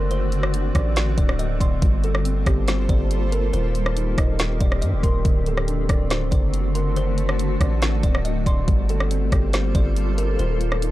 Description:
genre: hip hop, atmospheric cloud-rap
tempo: 140 BPM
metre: 4/4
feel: half-time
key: G harmonic minor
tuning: A4 = 440 Hz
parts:
  - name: kalimba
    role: melody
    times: 0.0-10.9 s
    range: A4 to Eb5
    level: -31 LUFS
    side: left 1 dB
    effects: tape echo
  - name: granular cloud pad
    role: sustained chords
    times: 0.0-10.9 s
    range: D3 to C5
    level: -29 LUFS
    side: left 1 dB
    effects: built-in reverb, sidechain pumping
  - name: muted felt-like synth keys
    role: arpeggios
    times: 0.0-10.9 s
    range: D3 to C6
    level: -31 LUFS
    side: right 2 dB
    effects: chorus, tape echo
  - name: long sustained 808-style bass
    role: bass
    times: 0.0-10.9 s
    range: D1 to G2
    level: -22 LUFS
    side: equal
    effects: none
  - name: wind-like tuned noise texture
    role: texture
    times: 0.0-10.9 s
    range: Bb3 to Eb5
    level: -38 LUFS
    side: left 2 dB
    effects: built-in reverb
  - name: trap drum kit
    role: drums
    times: 0.1-10.9 s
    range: hi-hat, kick drum, rim click, snare drum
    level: -21 LUFS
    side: equal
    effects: none
room: little or no reverb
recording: dry, gritty hardware recording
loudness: -19 LUFS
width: side -16 dB against mid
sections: 0.0-10.9 A section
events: none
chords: 0.0 D7; 1.8 Gm11; 3.5 Eb6; 5.2 D7; 8.7 Gm11; 10.4 Eb6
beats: | 0.11 0.54 0.96 1.39 | 1.82 2.25 2.68 3.11 | 3.54 3.96 4.39 4.82 | 5.25 5.68 6.11 6.54 | 6.96 7.39 7.82 8.25 | 8.68 9.11 9.54 9.96 | 10.39 10.82

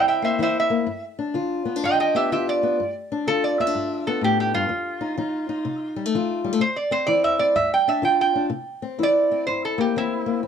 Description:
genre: acoustic country blues, solo or duo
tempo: 126 BPM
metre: 4/4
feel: swing 65% on 8ths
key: unclear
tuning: A4 = 440 Hz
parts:
  - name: lap resonator guitar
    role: melody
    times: 0.0-10.4 s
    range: E4 to G5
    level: -21 LUFS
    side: right 2 dB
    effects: none
  - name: fingerpicked old ladder-braced acoustic guitar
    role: accompaniment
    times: 0.0-10.5 s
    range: F2 to F4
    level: -24 LUFS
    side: left 4 dB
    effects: none
room: light reverb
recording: none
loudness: -20 LUFS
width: side -7 dB against mid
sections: 0.0-8.5 A section; 8.5-10.5 A section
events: resonator guitar played with a steel bar solo 0.0-8.5, 8.5-10.5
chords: 0.0 C7; 0.9 G7; 4.7 F7; 6.6 C; 7.6 G5; 8.5 C7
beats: 0.41 | 0.88 1.36 1.84 2.31 | 2.79 3.27 3.74 4.22 | 4.70 5.17 5.65 6.13 | 6.61 7.08 7.56 8.04 | 8.51 8.99 9.47 9.94 | 10.42

